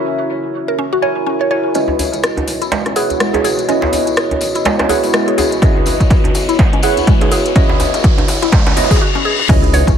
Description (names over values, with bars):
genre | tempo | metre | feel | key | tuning
afro house | 124 BPM | 4/4 | swing 58% on 16ths | C# dorian | A4 = 440 Hz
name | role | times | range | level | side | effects
dark analog pad | sustained chords | 0.0-10.0 s | B3 to E5 | -24 LUFS | left 1 dB | chorus, phaser, sidechain pumping
tine electric piano | stabs | 0.0-10.0 s | E4 to G#5 | -18 LUFS | right 1 dB | phaser, sidechain pumping, low-pass filter, tape echo
mallet-like synth pluck | arpeggios | 0.7-10.0 s | G#3 to C#5 | -20 LUFS | equal | chorus, phaser, sidechain pumping, dub echo
smooth synth bass | bass | 1.7-10.0 s | G#1 to C#2 | -24 LUFS | equal | none
tambourine | percussion | 1.7-10.0 s | none | -28 LUFS | left 5 dB | tape echo
riser, reverse cymbal and impact | sound effects | 4.5-10.0 s | none | -23 LUFS | left 2 dB | none
house drum kit | drums | 1.8-10.0 s | crash cymbal, hi-hat, rim click, toms | -22 LUFS | left 1 dB | overdrive, high-pass filter on hats, high-pass filter on toms, high-pass filter on snare, high-pass filter on cymbals, high-pass filter on room, tape echo
djembe | percussion | 1.9-9.8 s | none | -22 LUFS | right 3 dB | none
electronic kick drum | drums | 5.6-10.0 s | none | -12 LUFS | equal | overdrive
room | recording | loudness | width
light reverb | echo-heavy mix | -12 LUFS | side -8 dB against mid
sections
0.0-1.8 A section; 1.8-9.5 B section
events
filter sweep on tine electric piano 0.0-1.8, 1.8-9.5; build-up 1.8-9.5; drum fill 1.8-9.0, 9.0-9.5; filter sweep on synth pluck 1.8-9.5; riser 4.5-9.0; reverse cymbal 8.5-9.5; break 9.0-9.5; impact 9.5-10.0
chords
0.0 F#7; 1.8 C#m11